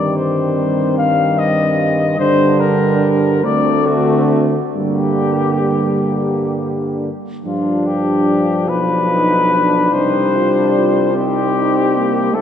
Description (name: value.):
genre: classical, hymn-like piece for brass band.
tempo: 43-52 BPM (dotted quarters).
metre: 6/8.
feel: rubato.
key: G minor.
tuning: A4 = 440 Hz.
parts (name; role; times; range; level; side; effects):
warm flugelhorn; melody; 0.0-12.4 s; F4 to F5; -18 LUFS; left 4 dB; none.
clear French horn section; second line; 0.0-12.4 s; Bb3 to F4; -22 LUFS; right 4 dB; none.
bright trombone section; accompaniment; 0.0-12.4 s; G3 to Eb4; -22 LUFS; left 1 dB; none.
clear trombone; accompaniment; 0.0-12.4 s; D3 to A3; -20 LUFS; right 2 dB; none.
clear tuba; bass; 0.0-12.4 s; B1 to G2; -21 LUFS; equal; none.
room: wet cathedral reverb, RT60 4.5 s.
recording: none.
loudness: -13 LUFS.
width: side -9 dB against mid.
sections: 0.0-7.5 A section; 7.5-12.4 B section.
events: none.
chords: 0.0 Cm/G; 2.2 Gm; 3.4 D7; 4.7 Gm; 7.5 G7; 9.9 Cm.